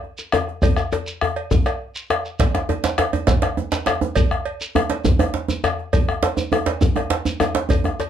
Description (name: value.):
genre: west african traditional, West African drum ensemble.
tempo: 136 BPM (dotted quarters).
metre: 12/8.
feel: straight.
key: none.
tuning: none.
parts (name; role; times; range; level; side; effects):
djembe; percussion; 0.0-8.1 s; none; -24 LUFS; left 7 dB; none.
shekere; percussion; 0.2-8.1 s; none; -28 LUFS; right 1 dB; none.
bombo; percussion; 0.3-8.0 s; none; -21 LUFS; equal; none.
cowbell; percussion; 0.3-8.1 s; none; -29 LUFS; right 6 dB; none.
djembe; percussion; 2.4-8.0 s; none; -21 LUFS; right 5 dB; none.
room: moderate studio ambience, RT60 0.5 s.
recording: dark, warm production.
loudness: -18 LUFS.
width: side -9 dB against mid.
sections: 0.0-2.4 A section; 2.4-8.1 B section.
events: none.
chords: none.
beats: 0.18 | 0.62 1.06 1.51 1.95 | 2.39 2.84 3.28 3.72 | 4.16 4.61 5.05 5.49 | 5.93 6.37 6.82 7.26 | 7.70.